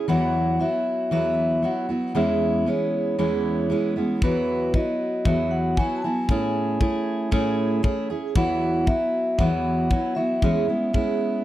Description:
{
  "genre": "acoustic pop",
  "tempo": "116 BPM",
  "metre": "4/4",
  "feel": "straight",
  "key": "E major",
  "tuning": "A4 = 440 Hz",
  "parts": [
    { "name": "fingerpicked steel-string acoustic guitar", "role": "accompaniment", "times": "0.0-11.4 s", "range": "E2 to G#4", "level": "-22 LUFS", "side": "right 1 dB", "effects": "none" },
    { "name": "vibraphone with soft mallets", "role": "melody", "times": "0.1-11.4 s", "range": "B4 to A5", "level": "-26 LUFS", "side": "left 1 dB", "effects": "slapback echo" },
    { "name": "kick drum", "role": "drums", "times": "4.2-11.1 s", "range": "none", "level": "-22 LUFS", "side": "left 1 dB", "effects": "none" }
  ],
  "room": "little or no reverb",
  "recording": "dry, close 1970s-style studio recording",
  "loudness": "-20 LUFS",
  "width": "side -14 dB against mid",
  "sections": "0.0-11.4 A section",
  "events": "none",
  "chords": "0.1 Esus2; 2.1 C#m7/E; 4.2 Esus2; 6.3 Amaj7; 8.4 Esus2; 10.4 C#m7/E"
}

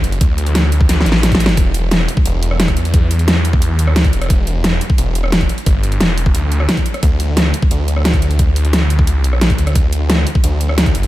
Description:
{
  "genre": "dark technical drum and bass",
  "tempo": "176 BPM",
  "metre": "4/4",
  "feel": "straight",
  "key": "unclear",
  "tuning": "A4 = 441 Hz",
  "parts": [
    { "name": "snarling distorted saw bass", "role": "bass", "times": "0.0-11.1 s", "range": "E1 to E2", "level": "-15 LUFS", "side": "equal", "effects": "distortion, tube saturation" },
    { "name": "dubstep drum kit", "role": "drums", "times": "0.0-11.1 s", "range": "hi-hat, rim click, snare drum", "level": "-17 LUFS", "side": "equal", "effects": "overdrive" },
    { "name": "electronic kick drum", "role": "drums", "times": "0.2-10.9 s", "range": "none", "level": "-14 LUFS", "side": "equal", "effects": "overdrive" }
  ],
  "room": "little or no reverb",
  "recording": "none",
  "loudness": "-12 LUFS",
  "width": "side -16 dB against mid",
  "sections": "0.0-11.1 A section",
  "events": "drum fill 0.9-1.6",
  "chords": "none"
}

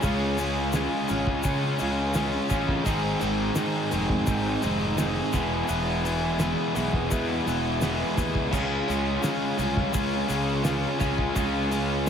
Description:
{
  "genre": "classic rock",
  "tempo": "85 BPM",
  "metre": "4/4",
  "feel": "straight",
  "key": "unclear",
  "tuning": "A4 = 439 Hz",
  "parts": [
    { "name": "picked steel-string acoustic guitar", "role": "accompaniment", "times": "0.0-12.1 s", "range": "Ab2 to Ab4", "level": "-34 LUFS", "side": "right 4 dB", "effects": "none" },
    { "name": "biting overdriven guitar", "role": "riff", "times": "0.0-12.1 s", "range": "Ab2 to Ab4", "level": "-30 LUFS", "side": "right 10 dB", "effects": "none" },
    { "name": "crunchy overdriven guitar", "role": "riff", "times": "0.0-12.1 s", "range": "Ab2 to Ab4", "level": "-29 LUFS", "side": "left 11 dB", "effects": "none" },
    { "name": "crunchy overdriven guitar", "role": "riff", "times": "0.0-12.1 s", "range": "E2 to Db4", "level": "-32 LUFS", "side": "equal", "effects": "none" },
    { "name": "fuzz picked electric bass", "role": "bass", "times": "0.0-12.1 s", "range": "E1 to Db3", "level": "-30 LUFS", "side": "equal", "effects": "overdrive" },
    { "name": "cloth-damped thuddy drum kit", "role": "drums", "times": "0.0-12.1 s", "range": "crash cymbal, hi-hat, kick drum, snare drum", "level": "-31 LUFS", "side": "equal", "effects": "none" },
    { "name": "egg shaker", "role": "percussion", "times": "0.0-12.1 s", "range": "none", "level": "-40 LUFS", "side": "left 6 dB", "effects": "none" }
  ],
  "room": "light reverb, small room reverb",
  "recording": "none",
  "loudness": "-23 LUFS",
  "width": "side -8 dB against mid",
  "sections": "0.0-12.1 A section",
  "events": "none",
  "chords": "0.0 Db; 2.9 Ab; 5.3 E; 8.5 Db"
}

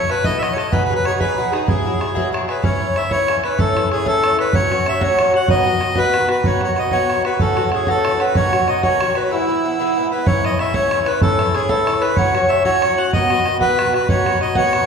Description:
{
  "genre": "celtic folk, Celtic jig",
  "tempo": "126 BPM (dotted quarters)",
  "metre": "6/8",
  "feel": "straight",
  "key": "unclear",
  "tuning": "A4 = 440 Hz",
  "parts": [
    { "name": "accordion", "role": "melody", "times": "0.0-14.9 s", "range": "D#4 to F#5", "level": "-19 LUFS", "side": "left 1 dB", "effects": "none" },
    { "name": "Irish bouzouki", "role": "accompaniment", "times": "0.0-14.9 s", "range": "G#2 to A4", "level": "-19 LUFS", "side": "equal", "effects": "none" },
    { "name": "bodhran", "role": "percussion", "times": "0.1-14.8 s", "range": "none", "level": "-21 LUFS", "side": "right 1 dB", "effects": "none" }
  ],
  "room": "wet recital hall reverb, RT60 1.6 s",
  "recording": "heard from further back in the room",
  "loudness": "-15 LUFS",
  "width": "side -6 dB against mid",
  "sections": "0.0-2.6 A section; 2.6-10.3 B section; 10.3-14.9 B section",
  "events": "break 9.3-10.3",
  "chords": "0.0 Asus2; 0.7 G#m7; 1.7 Eadd9; 2.6 C#m; 3.6 A; 4.5 F#m; 5.5 B; 7.4 F#m7; 8.4 Badd9; 9.3 E; 10.3 C#m; 11.2 A; 12.2 F#m; 13.1 B"
}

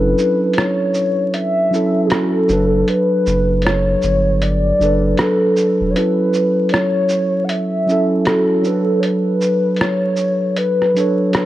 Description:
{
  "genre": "lo-fi hip hop",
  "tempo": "78 BPM",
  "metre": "4/4",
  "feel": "swing 62% on 16ths",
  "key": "F# phrygian",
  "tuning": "A4 = 440 Hz",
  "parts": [
    { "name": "warbly nostalgic lead", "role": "melody", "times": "0.0-11.5 s", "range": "G#4 to F#5", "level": "-18 LUFS", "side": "left 1 dB", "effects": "chorus, analog delay" },
    { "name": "mellow tine electric piano", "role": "accompaniment", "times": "0.0-11.5 s", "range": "F#3 to C#5", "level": "-17 LUFS", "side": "right 1 dB", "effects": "none" },
    { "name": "saturated sub bass", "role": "bass", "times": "0.0-5.9 s", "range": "E1 to G1", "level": "-19 LUFS", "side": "equal", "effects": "none" },
    { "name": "lo-fi sampler-style drum kit", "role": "drums", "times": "0.2-11.5 s", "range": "hi-hat, rim click, shaker", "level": "-22 LUFS", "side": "equal", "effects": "none" }
  ],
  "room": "moderate plate reverb, RT60 2.2 s",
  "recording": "vinyl crackle, nothing above 10.6 kHz",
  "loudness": "-14 LUFS",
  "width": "side -14 dB against mid",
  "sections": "0.0-11.5 A section",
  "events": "break 0.0-11.5",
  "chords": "0.0 F#m7; 2.5 Gmaj9/F#; 6.0 F#m7; 8.6 Bm9/F#"
}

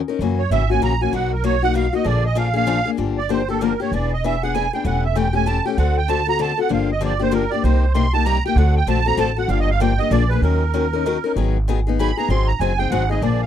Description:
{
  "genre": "acoustic string swing (jazz manouche)",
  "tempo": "193 BPM",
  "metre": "3/4",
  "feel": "swing 61% on 8ths",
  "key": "G minor",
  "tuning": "A4 = 440 Hz",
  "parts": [
    { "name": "picked steel-string acoustic guitar", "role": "accompaniment", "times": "0.1-13.4 s", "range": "B2 to Bb4", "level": "-21 LUFS", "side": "left 10 dB", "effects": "none" },
    { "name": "upright bass", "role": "bass", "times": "0.2-13.5 s", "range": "E1 to Gb2", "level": "-20 LUFS", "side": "right 1 dB", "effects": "none" },
    { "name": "musette accordion", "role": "melody", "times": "0.4-13.5 s", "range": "A4 to C6", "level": "-22 LUFS", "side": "right 8 dB", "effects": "none" }
  ],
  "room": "little or no reverb",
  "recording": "dry, close 1970s-style studio recording",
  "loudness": "-17 LUFS",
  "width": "side -10 dB against mid",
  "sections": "0.0-3.0 A section; 3.0-10.4 A section; 10.4-13.5 A section",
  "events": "accordion solo 0.0-3.0, 3.0-13.5",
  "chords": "0.2 Gb7; 1.1 Bmaj7; 2.1 Bb7; 3.0 Gm7; 3.9 E7; 4.8 A7/E; 5.8 D7; 6.7 Gm7; 7.6 Cm7; 8.6 D7; 9.5 Gm7; 10.1 Bb7; 10.4 Ebm7; 11.4 Abm7; 12.3 Ab7"
}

